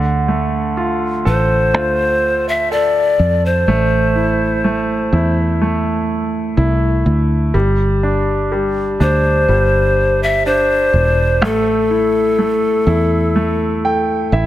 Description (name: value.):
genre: pop ballad.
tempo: 62 BPM.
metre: 4/4.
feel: straight.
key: unclear.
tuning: A4 = 440 Hz.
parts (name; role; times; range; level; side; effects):
bright concert grand piano; accompaniment; 0.0-14.5 s; D3 to G5; -18 LUFS; right 1 dB; none.
fingered electric bass; bass; 0.0-14.5 s; E1 to F2; -18 LUFS; equal; none.
breathy large pan pipes; melody; 1.3-14.3 s; A4 to E5; -16 LUFS; left 2 dB; none.
room: light reverb.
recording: none.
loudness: -13 LUFS.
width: side -13 dB against mid.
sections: 0.0-14.5 A section.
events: grand piano fill 13.4-14.5.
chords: 0.0 Dm7; 3.7 Am; 7.5 Gsus4; 11.4 A5.